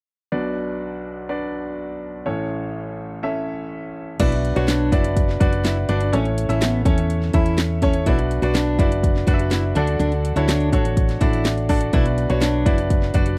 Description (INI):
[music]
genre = piano-driven pop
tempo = 124 BPM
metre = 4/4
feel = straight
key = B minor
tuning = A4 = 440 Hz
[part]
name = clear concert grand piano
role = accompaniment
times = 0.3-13.4 s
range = A1 to E5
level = -26 LUFS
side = equal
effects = none
[part]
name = fingerpicked steel-string acoustic guitar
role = riff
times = 4.2-13.3 s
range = B3 to F#4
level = -28 LUFS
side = equal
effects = none
[part]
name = hollow-body short-scale fingered electric bass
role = bass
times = 4.2-13.4 s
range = F#1 to E2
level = -24 LUFS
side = equal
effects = none
[part]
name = house drum kit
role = drums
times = 4.2-13.4 s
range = crash cymbal, hi-hat, kick drum, snare drum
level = -23 LUFS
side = equal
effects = none
[sound]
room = little or no reverb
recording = dry, close 1970s-style studio recording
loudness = -20 LUFS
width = mono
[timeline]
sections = 0.3-4.2 A section; 4.2-13.4 B section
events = none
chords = 0.3 Bm; 2.3 A; 4.2 Bm; 6.1 A; 8.1 Bm; 9.8 D; 11.9 Bm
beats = | 0.32 0.81 1.29 1.77 | 2.26 2.74 3.23 3.71 | 4.20 4.68 5.16 5.65 | 6.13 6.62 7.10 7.58 | 8.07 8.55 9.03 9.52 | 10.00 10.48 10.97 11.45 | 11.94 12.42 12.90